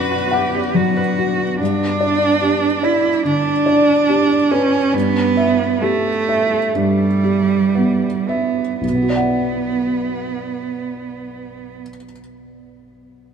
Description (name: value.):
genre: neoclassical piano and strings.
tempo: 54-73 BPM.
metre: 4/4.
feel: rubato.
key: B minor.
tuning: A4 = 440 Hz.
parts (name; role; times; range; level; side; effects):
rich violin; melody; 0.0-1.2 s; B4; -28 LUFS; left 10 dB; none.
rich cello; second line; 0.0-11.8 s; G3 to G4; -18 LUFS; right 5 dB; none.
felt-muted upright piano; accompaniment; 0.0-13.3 s; B1 to F#5; -19 LUFS; left 2 dB; none.
granular cloud pad; sustained chords; 0.0-1.6 s; B3 to F#5; -29 LUFS; equal; built-in reverb.
Celtic harp; arpeggios; 0.0-4.9 s; B4 to D6; -29 LUFS; right 4 dB; none.
room: moderate huge ambient reverb, RT60 4.7 s.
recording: minimal, uncompressed stereo recording.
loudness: -15 LUFS.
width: side -7 dB against mid.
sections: 0.0-1.6 A section; 1.6-8.8 B section; 8.8-12.9 C section.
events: slowing down 0.0-8.8.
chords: 0.0 Bm; 1.6 G; 4.9 Em/G; 8.8 Bm.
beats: 0.75 | 1.60 2.42 3.26 4.09 | 4.94 5.82 6.76 7.75 | 8.82 9.87 10.90 11.92.